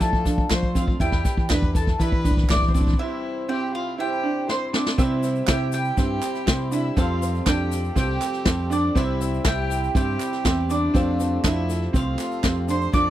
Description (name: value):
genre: indie folk with a building arrangement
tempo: 121 BPM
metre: 4/4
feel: straight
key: C major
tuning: A4 = 441 Hz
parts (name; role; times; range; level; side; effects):
- bowl-back mandolin; melody; 0.0-13.1 s; C5 to D6; -29 LUFS; right 1 dB; none
- dark fiddle; second line; 0.0-13.1 s; C4 to D5; -31 LUFS; left 3 dB; none
- clear concert grand piano; accompaniment; 0.0-13.1 s; F1 to E5; -35 LUFS; right 3 dB; none
- picked twelve-string acoustic guitar; accompaniment; 0.0-13.1 s; C3 to C5; -35 LUFS; left 4 dB; none
- clear upright piano; arpeggios; 0.0-13.1 s; C4 to E4; -28 LUFS; right 4 dB; none
- picked electric bass; bass; 0.0-13.1 s; C2 to F3; -26 LUFS; equal; none
- vintage brush drum kit; drums; 0.0-13.1 s; kick drum, snare drum; -22 LUFS; equal; none
- tube shaker; percussion; 0.0-13.1 s; none; -42 LUFS; left 19 dB; none
- group handclap; percussion; 0.5-12.6 s; none; -33 LUFS; right 12 dB; none
- hand-pumped harmonium; sustained chords; 5.0-13.1 s; C3 to A4; -36 LUFS; left 1 dB; none
room: small room ambience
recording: dry, close 1970s-style studio recording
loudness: -20 LUFS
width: side -13 dB against mid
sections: 0.0-5.0 A section; 5.0-13.1 B section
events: build-up 0.0-5.0; drum fill 0.0-3.0, 4.5-5.0; break 3.0-5.0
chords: 0.0 Dm/F; 1.0 Em7; 3.0 C; 7.0 Fadd9; 9.0 C; 10.9 Fadd9